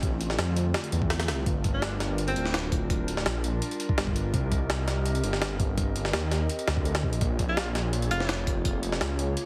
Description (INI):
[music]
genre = drum and bass, jungle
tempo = 167 BPM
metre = 4/4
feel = straight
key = G minor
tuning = A4 = 442 Hz
[part]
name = warbly tape-like pad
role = sustained chords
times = 0.0-9.5 s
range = D3 to Eb5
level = -38 LUFS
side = equal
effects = chorus, built-in reverb
[part]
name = detuned saw bass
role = bass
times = 0.0-9.4 s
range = D1 to F2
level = -31 LUFS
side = equal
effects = none
[part]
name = jungle sampler-style drum kit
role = drums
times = 0.0-9.5 s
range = hi-hat, kick drum, snare drum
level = -31 LUFS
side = equal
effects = none
[part]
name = breathy tenor saxophone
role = melody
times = 1.7-2.6, 7.5-8.4 s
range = C4 to F4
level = -36 LUFS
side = equal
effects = dub echo
[sound]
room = light reverb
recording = heavily compressed radio sound, multiband compression, vinyl crackle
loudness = -28 LUFS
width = mono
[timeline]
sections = 0.0-9.5 A section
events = none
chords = 0.0 Dm7; 1.5 Gm7; 4.3 Cm7; 7.2 Bbm7